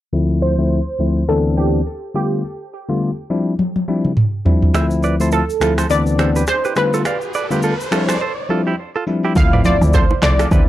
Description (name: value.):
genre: afrobeats.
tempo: 104 BPM.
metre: 4/4.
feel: swing 58% on 16ths.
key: unclear.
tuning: A4 = 440 Hz.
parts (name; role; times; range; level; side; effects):
bell-like tine electric piano; accompaniment; 0.1-10.7 s; D2 to F4; -17 LUFS; left 2 dB; low-pass filter.
analog pluck; melody; 0.4-10.7 s; G4 to F5; -21 LUFS; right 1 dB; chorus, low-pass filter, tape echo.
afro-pop drum kit; drums; 3.6-10.7 s; finger snaps, handclaps, kick drum, rim click, shaker, toms; -18 LUFS; equal; none.
riser and impact; sound effects; 6.5-10.7 s; none; -27 LUFS; equal; none.
direct-recorded clean electric guitar; riff; 4.8-10.6 s; E4 to F5; -23 LUFS; right 6 dB; low-pass filter, tape echo.
woody log drum bass; bass; 9.4-10.7 s; C2 to D2; -16 LUFS; equal; none.
congas and bongos; percussion; 9.4-10.7 s; none; -24 LUFS; right 4 dB; none.
room: light reverb.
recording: dark, warm production.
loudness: -15 LUFS.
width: side -14 dB against mid.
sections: 0.1-9.4 A section; 9.4-10.7 B section.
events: filter sweep 0.1-9.4; drum fill 3.6-4.7; riser 6.5-9.4; impact 9.4-10.7.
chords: 0.1 Fmaj7/D; 1.3 Cmaj9/D; 2.1 G9/D; 3.3 Dm11; 4.7 Fmaj7/D; 5.9 Cmaj9/D; 6.8 G9/D; 7.9 Dm11; 9.4 Fmaj7/D.